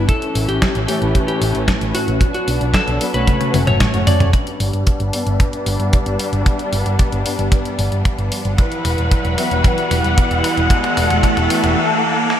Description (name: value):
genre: italo disco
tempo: 113 BPM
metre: 4/4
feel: straight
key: unclear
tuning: A4 = 436 Hz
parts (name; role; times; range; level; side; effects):
- lightly driven lead guitar; melody; 0.0-4.3 s; F#4 to D5; -22 LUFS; equal; digital delay
- dark studio string section; sustained chords; 0.0-12.4 s; E3 to F#5; -21 LUFS; left 1 dB; vintage 12-bit sampler grit, low-pass filter
- analog synth brass; stabs; 0.0-11.8 s; G2 to F#5; -24 LUFS; left 2 dB; chorus, ping-pong delay
- picked electric bass with an envelope filter; bass; 0.0-11.7 s; E1 to B1; -20 LUFS; equal; tube saturation
- detuned 8-bit digital drum machine; drums; 0.1-12.4 s; hi-hat, snare drum, toms; -22 LUFS; equal; high-pass filter on hats, small room ambience, high-pass filter on snare, high-pass filter on toms, gated reverb
- kick drum; drums; 0.1-11.3 s; none; -16 LUFS; equal; small room ambience
- riser; sound effects; 6.3-12.4 s; none; -24 LUFS; right 2 dB; none
room: moderate lush hall reverb, RT60 1.8 s, small room reverb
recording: bright 1980s-style digital production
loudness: -14 LUFS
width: side -10 dB against mid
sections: 0.0-4.3 A section; 4.3-12.4 B section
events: drum fill 3.3-4.3, 4.3-11.8; filter sweep on string section 4.3-12.4; riser 6.3-12.4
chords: 0.1 A; 2.2 Bm; 3.3 F#m; 4.3 G; 8.6 Emadd9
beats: | 0.09 0.62 1.15 1.68 | 2.21 2.74 3.27 3.81 | 4.34 4.87 5.40 5.93 | 6.46 6.99 7.52 8.05 | 8.58 9.12 9.65 10.18 | 10.71 11.24 11.77 12.30